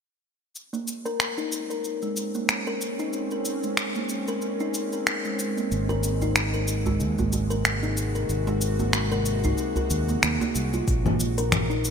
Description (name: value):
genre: organic downtempo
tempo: 93 BPM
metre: 4/4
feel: swing 56% on 16ths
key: Bb minor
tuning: A4 = 440 Hz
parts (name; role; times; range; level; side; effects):
- bowed-like drone; sustained chords; 1.6-11.9 s; C3 to Gb4; -33 LUFS; right 2 dB; built-in reverb, vintage 12-bit sampler grit, sidechain pumping
- organic electronic drum kit; drums; 0.6-11.9 s; cabasa, congas, finger snaps, hi-hat; -27 LUFS; left 1 dB; none
- kalimba; arpeggios; 0.7-11.8 s; Ab3 to Bb4; -28 LUFS; left 1 dB; low-pass filter, ping-pong delay
- fretless electric bass; bass; 5.7-11.9 s; Ab1 to Eb2; -27 LUFS; equal; tube saturation, lush chorus
- djembe; percussion; 5.9-10.9 s; none; -32 LUFS; right 2 dB; none
- electronic kick drum; drums; 10.9-11.0 s; none; -25 LUFS; equal; none
room: moderate lush hall reverb, RT60 2.9 s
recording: bright 1980s-style digital production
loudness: -23 LUFS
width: side -7 dB against mid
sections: 0.6-10.9 A section; 10.9-11.9 B section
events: filter sweep on synth drone 0.6-10.9; filter sweep on kalimba 10.9-11.9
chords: 0.6 Bbm9; 5.7 Ab7; 10.9 Bbm9